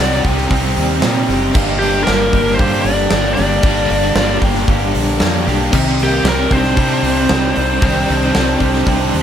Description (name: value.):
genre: classic rock.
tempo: 115 BPM.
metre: 4/4.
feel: straight.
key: unclear.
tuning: A4 = 442 Hz.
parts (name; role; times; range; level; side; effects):
biting lead guitar; melody; 0.0-9.2 s; G4 to Eb5; -19 LUFS; left 1 dB; overdrive, slapback echo.
octave-fuzz lead guitar; second line; 0.0-9.2 s; G3 to G4; -24 LUFS; right 4 dB; distortion.
picked steel-string acoustic guitar; accompaniment; 0.0-9.2 s; G2 to G4; -26 LUFS; left 3 dB; none.
biting overdriven guitar; riff; 0.0-9.2 s; G2 to C4; -21 LUFS; equal; tremolo.
cranked stack guitar; riff; 0.0-9.2 s; G2 to G4; -19 LUFS; equal; overdrive.
overdriven fingered electric bass; bass; 0.0-9.2 s; F#1 to C3; -20 LUFS; equal; none.
big rock drum kit; drums; 0.2-9.2 s; crash cymbal, hi-hat, kick drum, snare drum; -18 LUFS; right 1 dB; none.
room: light reverb.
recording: none.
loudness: -12 LUFS.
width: side -9 dB against mid.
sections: 0.0-9.2 A section.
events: none.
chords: 0.0 Cmadd9; 1.6 Gm; 5.7 Cmadd9.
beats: 0.51 1.03 | 1.55 2.07 2.59 3.12 | 3.64 4.16 4.68 5.20 | 5.72 6.25 6.77 7.29 | 7.81 8.34 8.86.